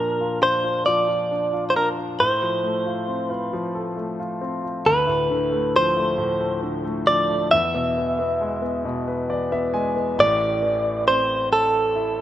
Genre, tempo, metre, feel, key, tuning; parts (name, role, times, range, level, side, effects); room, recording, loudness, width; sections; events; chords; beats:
pop; 45 BPM (dotted quarters); 6/8; straight; A4 = 441 Hz
direct-recorded clean electric guitar; melody; 0.0-12.2 s; A4 to E5; -20 LUFS; right 1 dB
clear concert grand piano; accompaniment; 0.0-12.2 s; A1 to G#5; -25 LUFS; left 2 dB
moderate lush hall reverb, RT60 2.6 s; rough home demo mix; -19 LUFS; side -12 dB against mid
0.0-10.2 A section; 10.2-12.2 B section
grand piano fill 8.8-10.2
0.0 Bb; 2.2 F/A; 4.9 Dm; 7.5 E; 10.2 Am
0.86 | 2.19 3.52 | 4.86 6.19 | 7.52 8.85 | 10.18 11.51